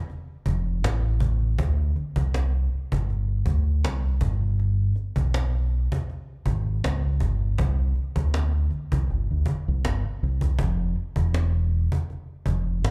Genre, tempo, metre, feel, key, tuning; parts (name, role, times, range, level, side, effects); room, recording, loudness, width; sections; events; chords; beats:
R&B, neo-soul; 80 BPM; 4/4; swing 54% on 16ths; A4 = 442 Hz
cajon; drums; 0.1-12.9 s; -32 LUFS; equal
deep dub fingered electric bass; bass; 0.5-12.9 s; E1 to D2; -25 LUFS; equal
small room reverb; live gig heard through the venue's PA, club reverb; -25 LUFS; mono
0.0-12.9 A section
0.09 0.84 | 1.59 2.34 3.09 3.84 | 4.59 5.34 6.09 6.84 | 7.59 8.34 9.09 9.84 | 10.59 11.34 12.09 12.84